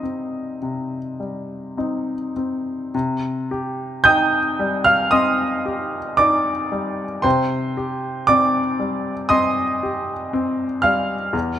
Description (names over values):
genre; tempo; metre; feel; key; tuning
classical, romantic nocturne for solo piano; 51-60 BPM; 4/4; rubato; C minor; A4 = 440 Hz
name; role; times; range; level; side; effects
clear upright piano; solo; 0.0-11.6 s; E2 to G6; -18 LUFS; equal; none
room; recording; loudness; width
light reverb; close, detailed microphones; -18 LUFS; side -10 dB against mid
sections
0.0-2.9 A section; 2.9-11.6 A section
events
none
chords
0.0 Cm